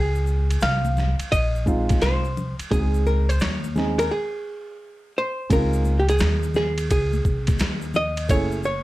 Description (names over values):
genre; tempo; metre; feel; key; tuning
hip hop, jazz-hop; 86 BPM; 4/4; swing 65% on 16ths; Db major; A4 = 439 Hz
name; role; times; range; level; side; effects
archtop guitar, miked and amplified; melody; 0.0-8.8 s; G4 to F5; -25 LUFS; equal; none
upright bass; bass; 0.0-8.8 s; Gb1 to Eb2; -23 LUFS; equal; none
egg shaker and congas; percussion; 0.2-8.8 s; none; -35 LUFS; left 5 dB; none
boom bap sampler-style drum kit; drums; 0.5-8.5 s; hi-hat, kick drum, ride cymbal, snare drum; -26 LUFS; equal; none
dark baby grand piano; accompaniment; 1.7-8.6 s; Ab3 to Ab4; -25 LUFS; right 2 dB; none
room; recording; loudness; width
light reverb; dark, warm production; -20 LUFS; side -17 dB against mid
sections
0.0-5.5 A section; 5.5-8.8 B section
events
break 4.1-5.5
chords
0.0 Dbmaj7sus2; 5.5 Dbmaj9; 8.3 Gbm7